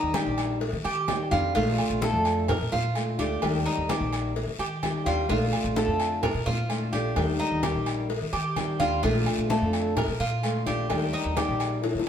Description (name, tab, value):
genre	latin, Cuban son and guajira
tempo	128 BPM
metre	4/4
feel	straight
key	Bb major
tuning	A4 = 439 Hz
part	fingerpicked old ladder-braced acoustic guitar	accompaniment	0.0-11.9 s	D3 to G4	-28 LUFS	left 2 dB	none
part	Cuban tres	arpeggios	0.0-11.6 s	Eb4 to Bb4	-30 LUFS	right 2 dB	none
part	upright bass	bass	0.0-12.1 s	Bb1 to Eb3	-30 LUFS	equal	none
part	agogo bells and timbales	percussion	0.1-11.8 s	none	-35 LUFS	right 4 dB	none
part	congas	percussion	0.1-12.1 s	none	-34 LUFS	left 1 dB	none
part	cowbell and bongos	percussion	0.1-12.1 s	none	-35 LUFS	left 3 dB	none
part	guiro	percussion	0.1-12.1 s	none	-40 LUFS	left 4 dB	none
room	wet stone room reverb, RT60 1.1 s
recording	band playing live in one room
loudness	-24 LUFS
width	side -8 dB against mid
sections	0.0-12.1 A section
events	drum fill 11.8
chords	0.0 Ebmaj7; 1.6 Bbmaj7; 3.4 Ebmaj7; 5.3 Bbmaj7; 7.2 Ebmaj7; 9.0 Bbmaj7; 10.9 Ebmaj7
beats	0.14 0.61 1.08 | 1.55 2.02 2.49 2.96 | 3.42 3.89 4.36 4.83 | 5.29 5.76 6.23 6.70 | 7.16 7.63 8.10 8.57 | 9.03 9.50 9.97 10.43 | 10.90 11.37 11.84